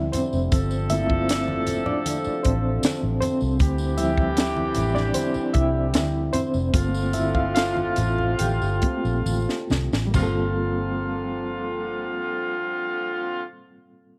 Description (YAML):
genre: lush 1970s-style soul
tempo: 66-78 BPM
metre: 4/4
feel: straight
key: G dorian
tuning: A4 = 440 Hz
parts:
  - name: bright reed electric piano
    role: accompaniment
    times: 0.0-14.2 s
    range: F3 to G5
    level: -29 LUFS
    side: equal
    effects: fast tremolo
  - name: mellow French horn section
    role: sustained chords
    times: 0.0-13.4 s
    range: C3 to A4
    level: -35 LUFS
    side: equal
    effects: none
  - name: warm horn section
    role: stabs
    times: 0.0-13.4 s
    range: D3 to A4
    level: -32 LUFS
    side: equal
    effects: none
  - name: vintage muted fingered electric bass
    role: bass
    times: 0.0-13.4 s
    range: F1 to D2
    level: -28 LUFS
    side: equal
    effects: none
  - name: compact cocktail drum kit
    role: drums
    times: 0.1-10.4 s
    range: china cymbal, hi-hat, kick drum, snare drum, toms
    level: -26 LUFS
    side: equal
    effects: none
  - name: congas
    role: percussion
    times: 0.1-10.6 s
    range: none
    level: -36 LUFS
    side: equal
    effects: none
  - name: tambourine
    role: percussion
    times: 0.1-10.6 s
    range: none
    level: -44 LUFS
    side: equal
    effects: none
room: light reverb, studio reverb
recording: none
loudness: -24 LUFS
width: mono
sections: 0.0-10.1 A section; 10.1-13.8 B section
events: reed electric piano solo 0.0-10.1; slowing down 3.6-10.1; drum fill 9.3-10.1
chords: 0.0 Dm11; 0.5 Gm11; 3.6 Dm11; 6.7 Gm11